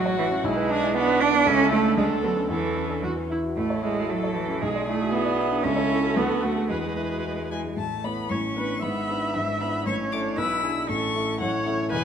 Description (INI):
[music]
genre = quick classical-period movement for piano quartet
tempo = 116 BPM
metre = 2/4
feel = straight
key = A major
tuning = A4 = 440 Hz
[part]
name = rich violin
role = melody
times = 0.0-12.0 s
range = C#4 to E6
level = -32 LUFS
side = left 6 dB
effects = none
[part]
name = clear cello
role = second line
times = 0.0-12.0 s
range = E3 to E4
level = -26 LUFS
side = right 5 dB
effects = none
[part]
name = dark baby grand piano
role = accompaniment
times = 0.0-12.0 s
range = E1 to D5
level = -27 LUFS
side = left 2 dB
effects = none
[part]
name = rich viola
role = accompaniment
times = 0.0-12.0 s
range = D4 to E5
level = -30 LUFS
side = right 3 dB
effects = none
[sound]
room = moderate recital hall reverb, RT60 1.6 s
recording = none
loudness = -22 LUFS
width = side -8 dB against mid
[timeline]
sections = 0.0-7.8 A section; 7.8-12.0 B section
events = none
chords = 0.4 E7/B; 1.5 A/C#; 2.0 Bm7/D; 2.5 A/E; 3.0 E5; 3.6 A; 4.6 E7/B; 5.6 A/C#; 6.2 Bm7/D; 6.7 E; 7.8 A; 8.3 Bm7/A; 8.8 E7/G#; 9.9 A; 10.4 E7/B; 10.9 A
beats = | 0.45 0.96 | 1.47 1.98 | 2.51 3.04 | 3.58 4.10 | 4.62 5.13 | 5.65 6.17 | 6.70 7.25 | 7.78 8.31 | 8.83 9.36 | 9.87 10.38 | 10.89 11.41 | 11.92